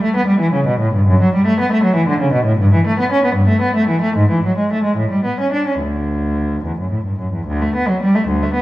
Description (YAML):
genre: classical, baroque-style suite movement for unaccompanied cello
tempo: 70-81 BPM (dotted quarters)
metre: 6/8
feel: rubato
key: D major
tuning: A4 = 442 Hz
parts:
  - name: rich cello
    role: solo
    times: 0.0-8.6 s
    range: D2 to D4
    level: -14 LUFS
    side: equal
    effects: none
room: wet recital hall reverb, RT60 1.7 s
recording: dark, warm production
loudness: -14 LUFS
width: side -16 dB against mid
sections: 0.0-7.5 A section; 7.5-8.6 B section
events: none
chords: none